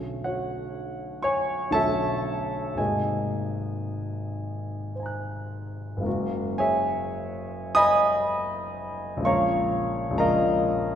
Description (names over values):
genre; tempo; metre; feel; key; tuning
classical, impressionist solo piano; 48-68 BPM; 3/4; rubato; unclear; A4 = 437 Hz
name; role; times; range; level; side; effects
warm grand piano; solo; 0.0-11.0 s; F#1 to F#6; -24 LUFS; equal; none
room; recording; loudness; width
wet concert hall reverb, RT60 1.8 s; minimal, uncompressed stereo recording; -24 LUFS; side -9 dB against mid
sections
0.0-6.1 A section; 6.1-11.0 B section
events
none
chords
0.0 Bm9; 2.8 G#9; 6.1 F#add9; 9.3 A#m7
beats
0.76 1.74 | 2.79 3.85 4.96 | 6.06 7.17 8.28 | 9.27 10.20